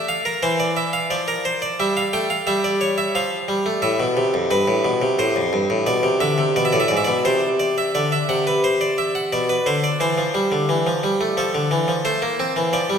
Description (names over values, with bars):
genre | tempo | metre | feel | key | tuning
classical, baroque-style two-part invention for harpsichord | 88 BPM | 3/4 | straight | D minor | A4 = 441 Hz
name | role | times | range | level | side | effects
harpsichord | solo | 0.0-13.0 s | F2 to G5 | -18 LUFS | equal | none
room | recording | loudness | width
wet scoring stage reverb, RT60 1.9 s | none | -18 LUFS | side -7 dB against mid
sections
0.0-8.0 A section; 8.0-13.0 B section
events
none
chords
0.0 Dm/A; 1.1 Dm/F; 1.8 A7/G; 3.2 Fadd9; 3.8 Am; 5.9 E7/B; 7.3 Cadd9; 8.0 D7; 9.3 Bm; 10.0 C; 11.4 F; 12.1 Am